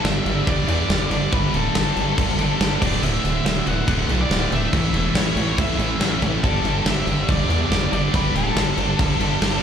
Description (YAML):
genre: quiet-loud alternative rock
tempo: 141 BPM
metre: 4/4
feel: straight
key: unclear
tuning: A4 = 440 Hz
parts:
  - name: octave-fuzz lead guitar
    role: melody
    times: 0.0-9.6 s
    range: A4 to F#5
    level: -27 LUFS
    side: left 2 dB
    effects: distortion, slapback echo, tape echo
  - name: biting overdriven guitar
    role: riff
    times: 0.0-9.6 s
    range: D2 to A3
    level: -27 LUFS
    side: left 11 dB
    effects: none
  - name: distorted electric guitar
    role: riff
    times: 0.0-9.6 s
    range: D2 to A3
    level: -27 LUFS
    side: right 12 dB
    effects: distortion, slapback echo
  - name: heavy high-gain guitar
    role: riff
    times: 0.0-9.6 s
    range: D2 to A4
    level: -28 LUFS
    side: right 2 dB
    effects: distortion, slapback echo
  - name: gritty driven synth bass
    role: bass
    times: 0.0-9.6 s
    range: D1 to E2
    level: -23 LUFS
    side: equal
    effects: none
  - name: big rock drum kit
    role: drums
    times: 0.0-9.6 s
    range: crash cymbal, kick drum, snare drum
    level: -23 LUFS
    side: equal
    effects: none
room: little or no reverb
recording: live gig heard through the venue's PA, club reverb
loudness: -18 LUFS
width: side -8 dB against mid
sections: 0.0-9.6 A section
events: none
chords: 0.0 Gsus2; 2.8 Dsus2; 4.7 A; 6.4 Gsus2